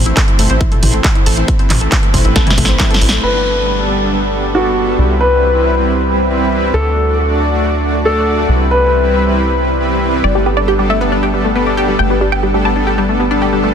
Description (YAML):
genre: uplifting trance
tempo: 137 BPM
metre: 4/4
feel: straight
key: G major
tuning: A4 = 439 Hz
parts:
  - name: tight sequencer bass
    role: bass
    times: 0.0-13.7 s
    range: G1 to D2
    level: -17 LUFS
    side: equal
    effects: sidechain pumping
  - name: supersaw pad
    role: sustained chords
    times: 0.1-13.7 s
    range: G3 to D5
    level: -16 LUFS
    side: right 1 dB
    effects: sidechain pumping
  - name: analog pluck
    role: arpeggios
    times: 0.1-3.2, 10.2-13.7 s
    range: E3 to A4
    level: -20 LUFS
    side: left 3 dB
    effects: wide subtle chorus, sidechain pumping, ping-pong delay
  - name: punchy analog drum machine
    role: drums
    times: 0.1-3.3 s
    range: crash cymbal, handclaps, hi-hat, snare drum, toms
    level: -18 LUFS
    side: equal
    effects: sidechain pumping on hats, low-pass filter on hats, sidechain pumping on toms, low-pass filter on toms, low-pass filter on snare, sidechain pumping on cymbals, low-pass filter on cymbals, low-pass filter on room
  - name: electronic kick drum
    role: drums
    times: 0.2-2.9 s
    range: none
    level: -14 LUFS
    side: equal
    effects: none
  - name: warm grand piano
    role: second line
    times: 3.2-10.2 s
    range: F#4 to B4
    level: -16 LUFS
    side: left 2 dB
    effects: ping-pong delay
  - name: wide unison pluck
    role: melody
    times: 10.2-13.7 s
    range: G4 to A5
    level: -18 LUFS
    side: right 1 dB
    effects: auto-pan, sidechain pumping, ping-pong delay
room: light reverb, digital ambience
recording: dense, heavily limited modern master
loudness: -11 LUFS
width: side -8 dB against mid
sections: 0.0-3.2 A section; 3.2-13.7 B section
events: drum fill 2.4-3.2; band accent 3.1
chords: 0.0 Am; 3.2 Gadd9; 5.0 Cmaj7; 6.7 D; 8.5 Cmaj7; 10.2 Gadd9